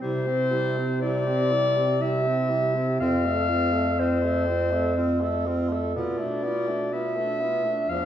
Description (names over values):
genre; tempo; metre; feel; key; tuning
classical, lyrical piece for single-reed quartet; 61 BPM; 3/4; rubato; unclear; A4 = 435 Hz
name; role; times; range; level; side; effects
dark clarinet; melody; 0.0-8.1 s; C5 to F5; -26 LUFS; left 2 dB; none
warm alto saxophone; second line; 0.0-8.1 s; D4 to A4; -33 LUFS; right 4 dB; none
mellow tenor saxophone; accompaniment; 0.0-8.1 s; F3 to C4; -29 LUFS; equal; none
mellow bass clarinet; bass; 0.0-8.1 s; E2 to C3; -27 LUFS; equal; none
room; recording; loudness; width
wet recital hall reverb, RT60 1.3 s; heard from further back in the room; -22 LUFS; side -10 dB against mid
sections
0.0-8.1 A section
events
none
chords
0.0 C; 3.0 F; 6.0 Bm7b5